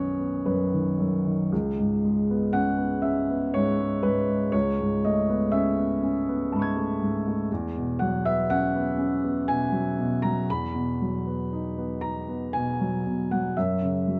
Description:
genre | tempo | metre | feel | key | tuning
classical, impressionist solo piano | 60 BPM | 3/4 | rubato | unclear | A4 = 440 Hz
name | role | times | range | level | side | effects
clear baby grand piano | solo | 0.0-14.2 s | B1 to G#6 | -26 LUFS | equal | none
room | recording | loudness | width
moderate concert hall reverb, RT60 2.2 s | close, detailed microphones | -26 LUFS | mono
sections
0.0-14.2 A section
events
none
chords
0.0 Badd9; 1.5 C#5; 4.5 Amaj9/C#; 7.5 Esus2; 10.5 Emaj9#11; 13.6 F#7(no3)

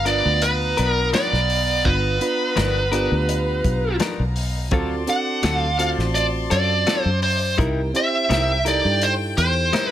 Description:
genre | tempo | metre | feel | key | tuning
straight-eighth soul blues | 84 BPM | 4/4 | straight | G mixolydian | A4 = 443 Hz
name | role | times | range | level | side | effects
smooth overdriven lead guitar | melody | 0.0-9.9 s | B4 to F#5 | -21 LUFS | right 1 dB | plate reverb
rich chamber string section | sustained chords | 0.0-9.9 s | B3 to C6 | -32 LUFS | left 4 dB | plate reverb
fingered electric bass | bass | 0.0-9.7 s | G1 to G2 | -23 LUFS | equal | none
reed electric piano | accompaniment | 0.1-9.9 s | B3 to C5 | -27 LUFS | right 3 dB | overdrive, plate reverb
direct-recorded clean electric guitar | stabs | 0.1-9.9 s | F3 to A#4 | -27 LUFS | left 5 dB | plate reverb
warm soul drum kit | drums | 0.1-9.9 s | hi-hat, kick drum, snare drum | -26 LUFS | left 1 dB | none
room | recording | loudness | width
light reverb | none | -18 LUFS | side -11 dB against mid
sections
0.0-9.9 A section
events
none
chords
0.0 G7#9; 4.7 D7#9; 7.6 C7#9

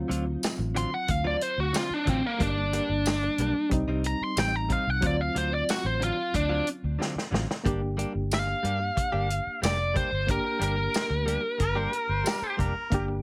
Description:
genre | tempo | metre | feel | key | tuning
straight-eighth soul blues | 91 BPM | 4/4 | straight | G minor | A4 = 440 Hz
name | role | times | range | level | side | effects
barky reed electric piano | accompaniment | 0.0-13.2 s | F#3 to G4 | -38 LUFS | equal | overdrive, fast tremolo
vintage muted fingered electric bass | bass | 0.0-13.2 s | F1 to G2 | -32 LUFS | equal | none
direct-recorded clean electric guitar | stabs | 0.1-13.1 s | G2 to G4 | -37 LUFS | equal | none
warm soul drum kit | drums | 0.1-13.1 s | hi-hat, kick drum, snare drum, tambourine | -33 LUFS | equal | none
biting lead guitar | melody | 0.8-12.6 s | Bb3 to C6 | -31 LUFS | equal | overdrive
mellow harmonica | second line | 11.6-13.1 s | Bb4 to C5 | -36 LUFS | equal | none
room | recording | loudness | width
light reverb | none | -28 LUFS | mono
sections
0.0-7.7 A section; 7.7-13.2 B section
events
lead electric guitar solo 0.0-7.7; drum fill 7.0-7.7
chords
0.0 D7#9; 2.4 Gm; 3.7 Cm; 5.0 D7#9; 7.7 Gm

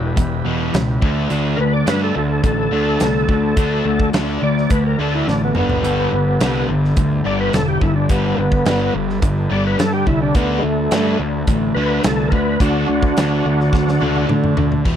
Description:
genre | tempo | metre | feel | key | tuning
classic rock | 106 BPM | 4/4 | straight | unclear | A4 = 436 Hz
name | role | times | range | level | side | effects
tonewheel organ | sustained chords | 0.0-15.0 s | B3 to D5 | -31 LUFS | right 1 dB | slow rotary speaker, overdrive
overdriven electric guitar | riff | 0.0-15.0 s | E2 to D4 | -22 LUFS | left 10 dB | none
sludgy distorted guitar | riff | 0.0-15.0 s | E2 to D4 | -23 LUFS | right 10 dB | overdrive
fuzz picked electric bass | bass | 0.0-15.0 s | E1 to D3 | -21 LUFS | equal | overdrive
big rock drum kit | drums | 0.2-15.0 s | crash cymbal, hi-hat, kick drum, snare drum, toms | -20 LUFS | equal | none
overdriven tonewheel organ | melody | 1.6-14.3 s | G#3 to D5 | -21 LUFS | equal | slow rotary speaker, chorus vibrato, tape echo
room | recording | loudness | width
little or no reverb | dry, close 1970s-style studio recording | -15 LUFS | side -9 dB against mid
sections
0.0-14.9 A section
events
tonewheel organ solo 0.0-14.9; drum fill 5.3-5.8, 13.7-14.9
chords
0.0 Em; 1.0 D; 5.6 Gadd9; 10.4 D

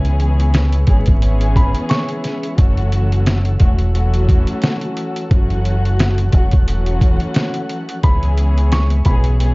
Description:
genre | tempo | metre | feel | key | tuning
hip hop, boom-bap hip-hop | 88 BPM | 4/4 | swing 56% on 16ths | unclear | A4 = 440 Hz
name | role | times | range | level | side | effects
dark upright piano | melody | 0.0-2.2, 8.0-9.5 s | G#5 to C#6 | -26 LUFS | equal | high-pass filter, low-pass filter, slapback echo
dark studio string section | accompaniment | 0.0-9.5 s | E3 to G#4 | -23 LUFS | left 1 dB | high-pass filter, low-pass filter
tonewheel organ | sustained chords | 0.0-9.5 s | A4 to F#6 | -33 LUFS | equal | chorus vibrato, lush chorus, high-pass filter, low-pass filter
deep dub fingered electric bass | bass | 0.0-9.5 s | E1 to C#2 | -15 LUFS | equal | none
trip hop sampler-style drum kit | drums | 0.0-9.5 s | hi-hat, kick drum, snare drum | -15 LUFS | equal | none
room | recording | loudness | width
little or no reverb | dark, warm production, vinyl crackle, nothing above 7.6 kHz | -13 LUFS | side -26 dB against mid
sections
0.0-9.5 A section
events
none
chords
0.0 C#m7; 2.6 F#m7; 8.0 C#m7

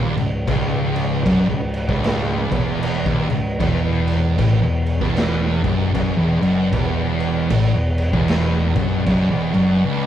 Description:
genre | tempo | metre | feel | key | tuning
stoner and doom metal | 77 BPM | 4/4 | swing 61% on 8ths | unclear | A4 = 440 Hz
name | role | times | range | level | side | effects
thick fuzz guitar | riff | 0.0-10.1 s | C#2 to A2 | -21 LUFS | left 4 dB | distortion
thick fuzz guitar | riff | 0.0-10.1 s | C#2 to A2 | -22 LUFS | right 6 dB | distortion
fingered electric bass | bass | 0.0-9.8 s | C#1 to A1 | -25 LUFS | right 1 dB | overdrive
raw garage drum kit | drums | 0.2-9.7 s | crash cymbal, kick drum, snare drum | -23 LUFS | right 1 dB | none
room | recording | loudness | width
light reverb | rough rehearsal-room recording | -16 LUFS | side -10 dB against mid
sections
0.0-9.8 A section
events
none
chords
0.0 C#m; 3.6 Esus24

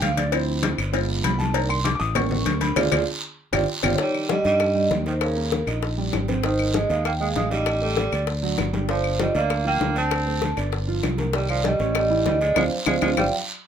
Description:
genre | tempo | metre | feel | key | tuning
Afro-Cuban jazz | 196 BPM | 4/4 | straight | unclear | A4 = 437 Hz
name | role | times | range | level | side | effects
warm concert grand piano | accompaniment | 0.0-13.3 s | D3 to Eb6 | -27 LUFS | right 4 dB | none
fingered electric bass | bass | 0.0-13.3 s | G1 to G2 | -26 LUFS | equal | none
congas | percussion | 0.0-13.2 s | none | -30 LUFS | left 3 dB | none
cowbell and bongos | percussion | 0.0-13.2 s | none | -28 LUFS | left 9 dB | none
guiro | percussion | 0.0-13.2 s | none | -34 LUFS | right 3 dB | none
claves | percussion | 0.3-13.2 s | none | -29 LUFS | left 9 dB | none
vibraphone with medium mallets | melody | 3.9-13.3 s | Bb4 to A5 | -25 LUFS | right 2 dB | none
clear tenor saxophone | second line | 3.9-13.2 s | Db3 to C4 | -28 LUFS | right 4 dB | none
room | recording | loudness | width
light reverb | none | -20 LUFS | side -8 dB against mid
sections
0.0-4.0 A section; 4.0-13.7 B section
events
grand piano solo 0.0-4.0; band accent 2.8-4.0, 12.6-13.7; drum fill 3.1-4.0, 12.6-13.7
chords
0.3 Dm7; 0.9 G7b9; 1.5 Cm7; 2.2 A7b9; 2.8 Ddim; 3.4 G5; 4.0 Ebmaj7; 5.2 Eb6; 6.4 Ab; 7.7 Ebmaj7#11/A; 8.3 Dadd11; 8.9 Gm7; 10.1 D5; 10.7 G5; 11.3 Cm; 12.0 A7; 12.6 Dm7b5

